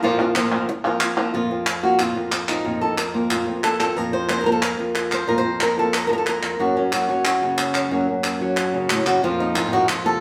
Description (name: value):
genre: flamenco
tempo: 182 BPM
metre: 4/4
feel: straight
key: unclear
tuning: A4 = 441 Hz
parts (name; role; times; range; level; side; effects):
- flamenco guitar; melody; 0.0-10.2 s; F2 to C5; -23 LUFS; equal; none
- flamenco guitar; stabs; 0.0-10.2 s; F2 to Gb4; -29 LUFS; equal; none
- palmas hand claps; percussion; 0.2-10.1 s; none; -27 LUFS; equal; none
room: wet large studio reverb, RT60 1.0 s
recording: band playing live in one room, faint mains hum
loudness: -21 LUFS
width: mono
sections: 0.0-1.3 A section; 1.3-10.2 B section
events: none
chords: 0.0 Fsus4; 6.6 Gb; 9.2 Fsus4